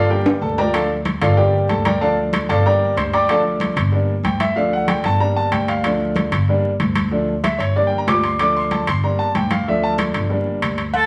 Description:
latin, salsa; 188 BPM; 4/4; straight; A4 = 443 Hz
clear concert grand piano; accompaniment; 0.0-10.8 s; F3 to D6; -21 LUFS; equal
upright bass; bass; 0.0-11.1 s; G1 to D2; -24 LUFS; equal
congas; percussion; 0.1-11.1 s; -28 LUFS; equal
timbales and agogo bells; percussion; 0.3-11.1 s; -26 LUFS; equal
bright trumpet section; melody; 10.9-11.1 s; A4 to A5; -17 LUFS; equal
wet large studio reverb, RT60 1.0 s; vinyl crackle; -18 LUFS; mono
0.0-10.9 A section
grand piano solo 0.0-10.9; drum fill 0.3-0.7
0.1 Gm; 0.7 Dm; 1.4 Gm; 2.0 Dm; 2.7 Gm; 3.3 Dm; 3.9 Gm; 4.6 Dm; 5.2 Gm; 5.8 Dm; 6.5 Gm; 7.1 Dm; 7.8 Gm; 8.4 Dm; 9.0 Gm; 9.7 Dm; 10.3 Gm
0.10 0.42 | 0.74 1.06 1.38 1.70 | 2.02 2.33 2.65 2.97 | 3.29 3.61 3.93 4.25 | 4.57 4.88 5.20 5.52 | 5.84 6.16 6.48 6.80 | 7.12 7.43 7.75 8.07 | 8.39 8.71 9.03 9.35 | 9.66 9.98 10.30 10.62 | 10.94

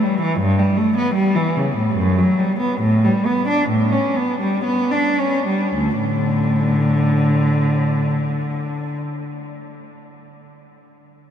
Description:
classical, baroque-style suite movement for unaccompanied cello; 54-82 BPM; 3/4; rubato; D major; A4 = 439 Hz
warm cello; solo; 0.0-9.0 s; D2 to D4; -16 LUFS; equal
wet huge ambient reverb, RT60 7.5 s; in a vast, echoing space; -16 LUFS; side -9 dB against mid
0.0-5.7 A section; 5.7-11.3 B section
slowing down 0.0-5.7
0.4 A7/G; 2.0 Gmaj7/F#; 2.8 A7; 5.7 D5
| 0.41 1.17 1.95 | 2.79 3.68 4.65 | 5.74 6.83 7.91

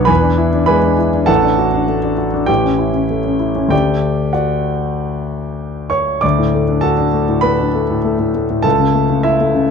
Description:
classical, virtuoso piano study; 98 BPM; 4/4; uneven beats, rubato; D major; A4 = 440 Hz
warm concert grand piano; solo; 0.0-9.7 s; A1 to D6; -13 LUFS; equal
moderate large studio reverb, RT60 0.9 s; dark, warm production; -13 LUFS; side -6 dB against mid
0.0-6.2 A section; 6.2-9.7 B section
0.1 E7; 1.3 D/A; 2.5 A; 3.7 D; 8.6 A/C#
0.09 0.69 | 1.28 1.89 2.49 3.10 | 3.72 4.35 4.98 5.61 | 6.23 6.84 7.44 8.04 | 8.65 9.25

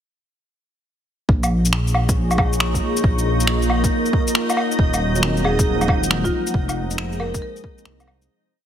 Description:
future garage; 137 BPM; 4/4; swing 66% on 16ths; Bb minor; A4 = 439 Hz
deep dark ambient pad; sustained chords; 1.9-8.3 s; F3 to Db6; -24 LUFS; equal; chorus, built-in reverb, sidechain pumping
dark detuned saw bass; bass; 1.3-8.3 s; Eb1 to C2; -21 LUFS; equal; sidechain pumping
electronic kick drum; drums; 1.3-7.8 s; -20 LUFS; equal; overdrive, small room ambience
backwards swelling texture; texture; 2.1-8.3 s; Eb4 to Eb5; -29 LUFS; right 1 dB; built-in reverb
electronic shaker, woodblock and finger snaps; drums; 1.4-8.3 s; -23 LUFS; equal; overdrive, small room ambience
overdriven tine electric piano; accompaniment; 5.2-8.3 s; F3 to C4; -27 LUFS; right 1 dB; sidechain pumping, ping-pong delay
marimba with medium mallets; melody; 5.4-7.8 s; F4 to Bb4; -27 LUFS; equal; digital delay
light reverb, digital ambience; heavily compressed radio sound, multiband compression; -17 LUFS; side -10 dB against mid
1.3-8.3 groove
fade-out 6.0-8.3
1.3 Bbm7; 4.8 Ebm7; 6.5 Fm
| 1.29 1.73 2.17 2.60 | 3.04 3.48 3.92 4.36 | 4.79 5.23 5.67 6.11 | 6.54 6.98 7.42 7.86

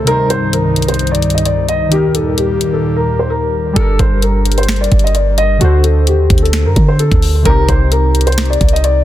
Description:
hip hop, trap; 130 BPM; 4/4; half-time; G minor; A4 = 440 Hz
dark concert grand piano; melody; 0.0-9.0 s; F#4 to Eb5; -16 LUFS; left 2 dB; low-pass filter, ping-pong delay
warbly lo-fi synth keys; accompaniment; 0.0-9.0 s; C3 to C5; -19 LUFS; left 1 dB; chorus, low-pass filter
airy breathy pad; sustained chords; 0.0-3.7 s; C2 to G3; -18 LUFS; right 1 dB; chorus
trap drum kit; drums; 0.1-9.0 s; finger snaps, hi-hat, kick drum, snare drum; -15 LUFS; equal
clean 808-style bass; bass; 3.8-9.0 s; G1 to D3; -12 LUFS; equal
little or no reverb; dense, heavily limited modern master; -10 LUFS; side -13 dB against mid
0.0-3.8 A section; 3.8-9.0 B section
0.1 Cm; 1.9 Eb; 3.8 Gm; 5.6 D7(no3); 7.5 Cm
| 0.07 0.53 0.99 1.46 | 1.92 2.38 2.84 3.30 | 3.76 4.22 4.69 5.15 | 5.61 6.07 6.53 6.99 | 7.46 7.92 8.38 8.84

